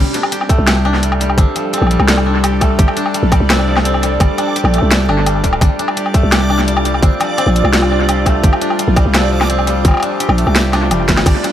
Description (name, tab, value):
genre	half-time drum and bass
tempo	170 BPM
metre	4/4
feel	half-time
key	unclear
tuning	A4 = 441 Hz
part	bowed-like drone	sustained chords	0.0-11.5 s	G3 to A4	-22 LUFS	left 1 dB	built-in reverb, sidechain pumping
part	koto	arpeggios	0.0-11.5 s	F3 to G4	-20 LUFS	left 1 dB	tape echo
part	growling 808-style bass	bass	0.0-11.3 s	D1 to C2	-15 LUFS	equal	none
part	backwards swelling texture	texture	1.2-11.5 s	D5	-24 LUFS	right 4 dB	built-in reverb
part	drum and bass drum kit	drums	0.1-11.5 s	crash cymbal, hi-hat, snare drum, toms, woodblock	-17 LUFS	left 1 dB	overdrive, studio reverb, analog delay
part	electronic kick drum	drums	0.5-11.3 s	none	-12 LUFS	equal	overdrive, studio reverb
room	light reverb, digital ambience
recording	echo-heavy mix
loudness	-11 LUFS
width	side -11 dB against mid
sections	0.0-11.5 A section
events	drum fill 10.9-11.3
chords	0.0 Gmadd9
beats	0.32 0.67 1.02 | 1.38 1.73 2.08 2.44 | 2.79 3.14 3.50 3.85 | 4.20 4.55 4.91 5.26 | 5.61 5.97 6.32 6.67 | 7.03 7.38 7.73 8.08 | 8.44 8.79 9.14 9.50 | 9.85 10.20 10.55 10.91 | 11.26